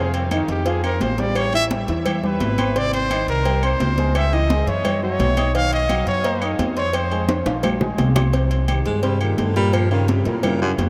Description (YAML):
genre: Afro-Cuban jazz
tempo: 172 BPM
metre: 4/4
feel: straight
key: unclear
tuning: A4 = 443 Hz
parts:
  - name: breathy trumpet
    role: melody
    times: 0.0-7.3 s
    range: C4 to F5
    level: -26 LUFS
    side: equal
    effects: none
  - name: dark upright piano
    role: accompaniment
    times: 0.0-10.9 s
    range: Bb2 to Eb6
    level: -28 LUFS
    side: equal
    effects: none
  - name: upright bass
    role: bass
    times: 0.0-10.9 s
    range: Ab1 to G2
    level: -24 LUFS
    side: equal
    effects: none
  - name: agogo bells and timbales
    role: percussion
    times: 0.1-10.9 s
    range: none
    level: -31 LUFS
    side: equal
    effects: none
  - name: congas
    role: percussion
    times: 0.1-10.9 s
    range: none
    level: -31 LUFS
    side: equal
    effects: none
  - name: cowbell and bongos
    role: percussion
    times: 0.1-10.9 s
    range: none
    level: -32 LUFS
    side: equal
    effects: none
  - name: claves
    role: percussion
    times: 0.3-10.6 s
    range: none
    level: -40 LUFS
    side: equal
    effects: none
  - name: breathy baritone saxophone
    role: second line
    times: 8.9-10.7 s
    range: F#2 to Ab3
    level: -25 LUFS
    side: equal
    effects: none
room: wet huge ambient reverb, RT60 7.5 s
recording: in a vast, echoing space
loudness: -20 LUFS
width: mono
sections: 0.0-8.3 A section; 8.3-10.9 A section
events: trumpet solo 0.0-8.3; drum fill 7.3-8.3; baritone saxophone solo 8.3-10.9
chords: 0.0 Fsus2; 1.4 Asus2; 2.8 Abmaj9; 4.2 Dbm; 4.8 Gb5; 5.5 Bmaj9; 6.9 Bbsus2; 8.3 Cm7; 9.7 Gm7b5